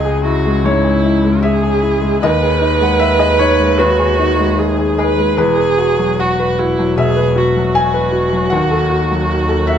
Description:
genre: neoclassical piano and strings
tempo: 76 BPM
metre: 4/4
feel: rubato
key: C# minor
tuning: A4 = 439 Hz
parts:
  - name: clear viola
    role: accompaniment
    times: 0.0-9.8 s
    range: E4 to B4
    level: -17 LUFS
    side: right 5 dB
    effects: none
  - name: felt-muted upright piano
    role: accompaniment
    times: 0.0-9.8 s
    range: C#2 to G#5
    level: -15 LUFS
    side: left 3 dB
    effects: none
  - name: rich double bass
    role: bass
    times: 0.0-9.8 s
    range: E1 to D#2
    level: -19 LUFS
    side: equal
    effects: none
room: light reverb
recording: band playing live in one room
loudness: -12 LUFS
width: side -8 dB against mid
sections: 0.0-9.8 A section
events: none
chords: 0.0 C#m; 2.2 G#m/D#; 5.4 Esus2; 8.5 D#dim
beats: 0.64 1.42 | 2.21 3.00 3.79 4.58 | 5.38 6.19 6.97 7.75 | 8.52 9.29

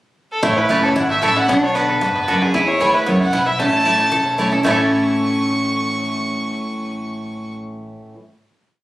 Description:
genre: bluegrass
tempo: 228 BPM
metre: 4/4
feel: straight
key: A major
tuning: A4 = 440 Hz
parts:
  - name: clear fiddle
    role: melody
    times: 0.3-7.5 s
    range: G#4 to C#6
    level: -20 LUFS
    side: equal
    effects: slapback echo, plate reverb
  - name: lap resonator guitar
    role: second line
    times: 0.4-7.9 s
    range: C#4 to E4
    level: -23 LUFS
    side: left 1 dB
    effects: none
  - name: picked steel-string acoustic guitar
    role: accompaniment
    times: 0.4-8.2 s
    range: E2 to F#4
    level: -21 LUFS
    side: equal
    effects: none
  - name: bluegrass banjo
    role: arpeggios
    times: 0.4-8.0 s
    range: A3 to A4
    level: -21 LUFS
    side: right 2 dB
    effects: slapback echo
  - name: upright bass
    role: bass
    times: 0.4-7.9 s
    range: E1 to E2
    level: -31 LUFS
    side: equal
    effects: none
  - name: mandolin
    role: stabs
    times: 0.7-8.2 s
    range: A3 to A5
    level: -23 LUFS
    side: right 1 dB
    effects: none
room: moderate studio reverb, RT60 0.5 s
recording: recorded on a phone in the room, club reverb, compression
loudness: -15 LUFS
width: side -16 dB against mid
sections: 0.0-0.4 pickup bar; 0.4-4.7 A section; 4.7-6.8 final chord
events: none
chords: 0.4 A; 1.5 Bm; 2.5 E; 3.6 A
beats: 0.17 | 0.43 0.70 0.96 1.22 | 1.49 1.75 2.02 2.28 | 2.54 2.81 3.07 3.33 | 3.60 3.86 4.12 4.39 | 4.65 4.92 5.18 5.44 | 5.71 5.97 6.23 6.50

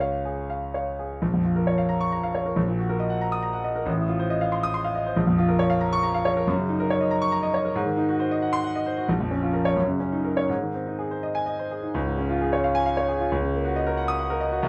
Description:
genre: classical, virtuoso piano study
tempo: 78-94 BPM (dotted quarters)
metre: 6/8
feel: rubato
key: Bb minor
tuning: A4 = 440 Hz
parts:
  - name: clear concert grand piano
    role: solo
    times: 0.0-14.7 s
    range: A1 to Eb6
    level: -25 LUFS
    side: equal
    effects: none
room: light reverb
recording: none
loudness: -25 LUFS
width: mono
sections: 0.0-1.2 A section; 1.2-12.0 B section; 12.0-14.7 A section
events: none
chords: 0.0 Db; 1.2 Bbm; 2.6 Ebm/Bb; 3.9 F7/A; 5.2 Bbm; 6.5 Ebm7/Gb; 7.8 Ab7; 9.1 Bbm; 9.8 Ebm7/Gb; 10.5 Ab; 12.0 Db; 13.3 Ebm7/Db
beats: 0.50 | 1.22 1.90 | 2.56 3.22 | 3.87 4.53 | 5.17 5.82 | 6.47 7.11 | 7.76 8.42 | 9.09 9.77 | 10.49 11.23 | 11.96 12.64 | 13.31 13.98 | 14.64

